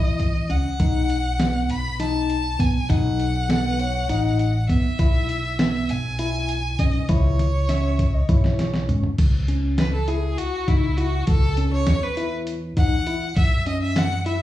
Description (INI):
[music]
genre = progressive instrumental, band music in an uneven meter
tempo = 200 BPM (eighths)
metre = 7/8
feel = straight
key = C# minor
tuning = A4 = 440 Hz
[part]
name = clear violin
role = melody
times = 0.0-14.4 s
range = E4 to B5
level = -28 LUFS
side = left 1 dB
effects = plate reverb, slapback echo
[part]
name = tine electric piano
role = arpeggios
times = 0.0-14.4 s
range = B3 to E4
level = -27 LUFS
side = left 2 dB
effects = plate reverb, slapback echo
[part]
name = upright bass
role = bass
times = 0.0-14.4 s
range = G#1 to F#2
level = -23 LUFS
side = equal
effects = none
[part]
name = dusty soul sampler-style drum kit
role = drums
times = 0.2-14.4 s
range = crash cymbal, hi-hat, kick drum, snare drum, toms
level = -22 LUFS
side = equal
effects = none
[part]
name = warm alto saxophone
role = second line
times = 3.5-9.2 s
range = A4 to E5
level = -34 LUFS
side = right 3 dB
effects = plate reverb, slapback echo
[sound]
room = light reverb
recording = live gig heard through the venue's PA, club reverb, studio reverb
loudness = -19 LUFS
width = side -14 dB against mid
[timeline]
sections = 0.0-9.2 A section; 9.2-14.4 B section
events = drum fill 7.4-9.2; violin solo 9.2-14.4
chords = 0.0 F#5; 0.8 B7; 5.0 E/B; 7.1 C#m; 13.4 F#7(no3)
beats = 0.20 0.50 | 0.80 1.10 1.40 1.70 2.00 2.30 2.60 | 2.90 3.20 3.50 3.80 4.10 4.40 4.70 | 5.00 5.29 5.59 5.89 6.19 6.49 6.79 | 7.09 7.39 7.69 7.99 8.29 8.59 8.89 | 9.19 9.49 9.79 10.08 10.38 10.68 10.98 | 11.28 11.58 11.88 12.18 12.47 12.77 13.07 | 13.37 13.67 13.96 14.26